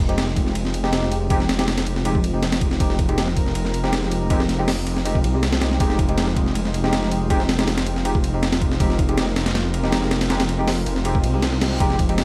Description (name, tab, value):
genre	drum and bass, jungle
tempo	160 BPM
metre	4/4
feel	straight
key	F minor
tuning	A4 = 440 Hz
part	airy breathy pad	sustained chords	0.0-12.2 s	Ab3 to Bb4	-32 LUFS	equal	chorus, vintage 12-bit sampler grit
part	dark detuned saw bass	bass	0.0-12.2 s	F1 to C2	-26 LUFS	equal	none
part	overdriven tine electric piano	stabs	0.1-12.2 s	Ab3 to G4	-28 LUFS	equal	ensemble chorus, dub echo
part	breakbeat sampler-style drum kit	drums	0.1-12.2 s	hi-hat, kick drum, ride cymbal, snare drum	-24 LUFS	equal	studio reverb
part	reverse cymbal	sound effects	11.2-11.8 s	none	-38 LUFS	equal	none
room	light reverb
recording	vinyl crackle, faint mains hum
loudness	-21 LUFS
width	mono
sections	0.0-12.2 A section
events	reverse cymbal 11.2-11.8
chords	0.0 Fm7